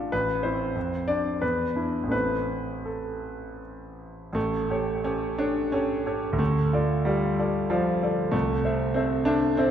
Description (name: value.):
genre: classical, romantic character piece for solo piano.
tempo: 78-97 BPM.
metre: 3/4.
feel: rubato.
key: A minor.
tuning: A4 = 440 Hz.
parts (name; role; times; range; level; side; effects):
warm concert grand piano; solo; 0.0-9.7 s; A1 to F5; -24 LUFS; equal; none.
room: wet scoring stage reverb, RT60 2.0 s.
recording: recorded in a church or concert hall.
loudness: -24 LUFS.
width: side -9 dB against mid.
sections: 0.0-4.4 A section; 4.4-9.7 B section.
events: none.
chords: 0.1 Am; 0.8 Dm/F; 1.4 E5; 2.1 Am; 4.4 A7; 6.4 Dm; 8.3 Am/C.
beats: | 0.12 0.76 1.42 | 2.12 2.86 3.62 | 4.36 5.04 5.73 | 6.40 7.06 7.71 | 8.34 8.97 9.59.